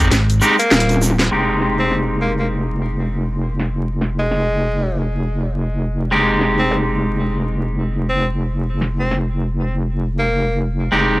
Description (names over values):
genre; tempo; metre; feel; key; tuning
glitch hop; 100 BPM; 4/4; swing 60% on 16ths; F minor; A4 = 440 Hz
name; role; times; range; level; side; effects
electric guitar at the edge of break-up; stabs; 0.0-11.2 s; Ab3 to G4; -19 LUFS; equal; low-pass filter, tape echo
wobble bass; bass; 0.0-11.2 s; Eb1 to F1; -19 LUFS; equal; chorus
drum and bass drum kit; drums; 0.0-9.3 s; hi-hat, snare drum, toms; -19 LUFS; equal; low-pass filter on hats, low-pass filter on snare, low-pass filter on toms, low-pass filter on room
tube shaker; percussion; 0.0-1.3 s; none; -28 LUFS; right 2 dB; none
clear tenor saxophone; melody; 0.6-10.6 s; Ab3 to C4; -24 LUFS; equal; vintage 12-bit sampler grit, tape echo
room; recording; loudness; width
digital ambience; dry, gritty hardware recording, transformer saturation, vinyl crackle; -16 LUFS; side -19 dB against mid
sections
0.0-1.3 A section; 1.3-11.2 B section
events
drum fill 0.7-1.3; filter sweep on clean electric guitar 1.3-11.2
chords
0.0 Fm9 (rootless); 1.3 Fm9